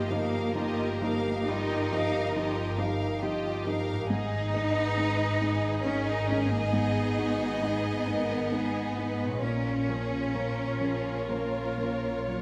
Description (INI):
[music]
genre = cinematic, emotional film score for orchestra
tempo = 60-70 BPM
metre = 3/4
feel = rubato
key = G# dorian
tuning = A4 = 440 Hz
[part]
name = rich studio violin section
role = melody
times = 0.0-12.4 s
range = F#4 to C#5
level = -42 LUFS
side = equal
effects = none
[part]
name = rich studio violin section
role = second line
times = 0.0-12.4 s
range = G4 to E#5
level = -38 LUFS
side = equal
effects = none
[part]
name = clear grand piano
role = accompaniment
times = 0.0-12.4 s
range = G2 to D#5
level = -36 LUFS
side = equal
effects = none
[part]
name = rich studio viola section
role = accompaniment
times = 0.0-12.4 s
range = D#4 to A#4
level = -38 LUFS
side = equal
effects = none
[part]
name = concert harp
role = arpeggios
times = 0.0-12.4 s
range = G2 to D#5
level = -42 LUFS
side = equal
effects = none
[part]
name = rich studio cello section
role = bass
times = 0.0-12.4 s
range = F#3 to D#4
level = -34 LUFS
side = equal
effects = none
[part]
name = warm chamber double bass section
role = bass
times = 0.0-12.4 s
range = G1 to A#1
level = -37 LUFS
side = equal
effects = none
[sound]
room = wet scoring stage reverb, RT60 2.0 s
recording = none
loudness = -29 LUFS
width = mono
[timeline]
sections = 0.0-12.4 A section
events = none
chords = 0.0 D#add9/G; 4.1 G#m; 9.4 A#m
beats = 0.55 | 1.48 2.36 3.23 | 4.10 4.96 5.84 | 6.72 7.61 8.51 | 9.42 10.34 11.29 | 12.27